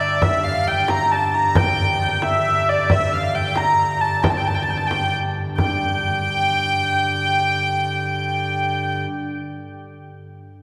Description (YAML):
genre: medieval dance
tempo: 90 BPM (dotted quarters)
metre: 6/8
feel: straight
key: G dorian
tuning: A4 = 440 Hz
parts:
  - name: clear hurdy-gurdy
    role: melody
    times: 0.0-9.0 s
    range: D5 to Bb5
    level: -21 LUFS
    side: equal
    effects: none
  - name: pipe organ, principal chorus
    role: drone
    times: 0.0-9.1 s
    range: G2 to D3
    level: -28 LUFS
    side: equal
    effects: none
  - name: frame drum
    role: percussion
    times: 0.2-5.8 s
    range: none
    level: -26 LUFS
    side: equal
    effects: none
room: wet church reverb, RT60 3.7 s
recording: band playing live in one room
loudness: -20 LUFS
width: mono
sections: 0.0-5.6 A section; 5.6-8.3 B section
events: none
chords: none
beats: | 0.21 0.89 | 1.56 2.23 | 2.90 3.57 | 4.24 4.91 | 5.58 6.25 | 6.92 7.59